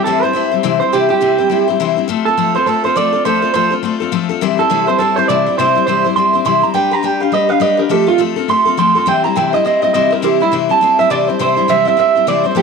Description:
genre	rock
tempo	206 BPM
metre	4/4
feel	swing 60% on 8ths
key	C major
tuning	A4 = 440 Hz
part	electric guitar through a small old amp	melody	0.0-12.6 s	E4 to C6	-13 LUFS	right 7 dB	tape echo
part	picked steel-string acoustic guitar	accompaniment	0.0-12.6 s	C3 to C5	-16 LUFS	left 12 dB	none
room	light reverb, studio reverb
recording	1960s-style stereo with parts hard left and right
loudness	-11 LUFS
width	side -5 dB against mid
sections	0.0-11.4 A section; 11.4-12.6 B section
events	clean electric guitar solo 0.0-11.4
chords	0.0 C; 2.1 F; 4.4 C; 6.7 G; 7.9 F; 9.1 C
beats	0.05 0.34 0.64 | 0.93 1.22 1.51 1.80 | 2.09 2.38 2.67 2.96 | 3.25 3.54 3.84 4.13 | 4.42 4.71 5.00 5.29 | 5.58 5.87 6.16 6.45 | 6.75 7.04 7.33 7.62 | 7.91 8.20 8.49 8.78 | 9.07 9.36 9.65 9.94 | 10.23 10.53 10.82 11.11 | 11.40 11.69 11.98 12.27 | 12.56

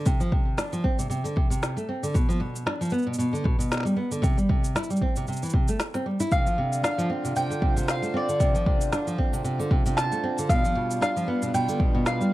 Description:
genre	folktronica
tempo	115 BPM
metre	4/4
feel	swing 56% on 16ths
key	D dorian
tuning	A4 = 439 Hz
part	nylon-string guitar	arpeggios	0.0-12.3 s	B2 to E4	-26 LUFS	equal	none
part	electronic cabasa and snare drum	drums	0.1-12.3 s	none	-32 LUFS	equal	overdrive
part	electronic kick drum	drums	0.1-11.9 s	none	-24 LUFS	equal	overdrive
part	mandolin	melody	6.3-12.3 s	D5 to A5	-28 LUFS	equal	ping-pong delay
part	hand-pumped harmonium	sustained chords	6.3-12.3 s	D3 to C5	-33 LUFS	right 2 dB	none
room	light reverb, small room ambience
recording	dark, warm production, vinyl crackle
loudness	-23 LUFS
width	side -16 dB against mid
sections	0.0-12.3 A section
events	none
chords	0.0 D7(no3); 2.1 G (rootless); 4.2 Am7 (rootless); 6.3 Dm7; 10.5 G7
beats	| 0.06 0.58 1.10 1.63 | 2.15 2.67 3.19 3.71 | 4.24 4.76 5.28 5.80 | 6.32 6.84 7.37 7.89 | 8.41 8.93 9.45 9.97 | 10.50 11.02 11.54 12.06

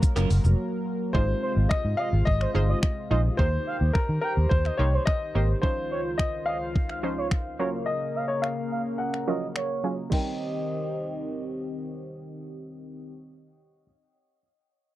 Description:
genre	dance-pop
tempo	107 BPM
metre	4/4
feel	straight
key	Eb mixolydian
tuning	A4 = 439 Hz
part	analog pluck	accompaniment	0.0-13.8 s	F3 to C5	-31 LUFS	right 3 dB	chorus, sidechain pumping, low-pass filter
part	chorused pulse-width pad	sustained chords	0.0-13.1 s	Db2 to C5	-33 LUFS	left 1 dB	sidechain pumping, low-pass filter
part	twelve-string electric guitar	riff	0.0-0.5 s	Gb3 to Bb4	-31 LUFS	right 4 dB	wide subtle chorus
part	gated 80s digital drum machine	drums	0.0-10.2 s	crash cymbal, finger snaps, handclaps, hi-hat, kick drum, shaker	-25 LUFS	equal	gated reverb
part	vintage muted fingered electric bass	bass	0.2-5.5 s	F1 to Eb3	-23 LUFS	equal	sidechain pumping
part	clear grand piano	melody	1.1-13.8 s	Bb4 to G5	-31 LUFS	left 2 dB	low-pass filter, tape echo
part	expressive portamento lead	melody	1.4-11.8 s	C5 to G5	-33 LUFS	right 4 dB	chorus, sidechain pumping, low-pass filter, tape echo
room	little or no reverb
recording	dry, close 1970s-style studio recording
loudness	-24 LUFS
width	side -15 dB against mid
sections	0.0-1.1 A section; 1.1-10.1 B section; 10.1-12.4 C section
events	break 0.6-1.1; filter sweep 1.1-10.1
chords	0.0 Gbmaj7; 1.1 Ab6; 3.4 Eb6; 5.6 Dbmaj9; 7.6 Gbmaj7; 10.1 Eb6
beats	0.03 0.59 | 1.15 1.71 2.27 2.83 | 3.39 3.95 4.51 5.07 | 5.63 6.19 6.75 7.32 | 7.88 8.44 9.00 9.56 | 10.12 10.68 11.24 11.80

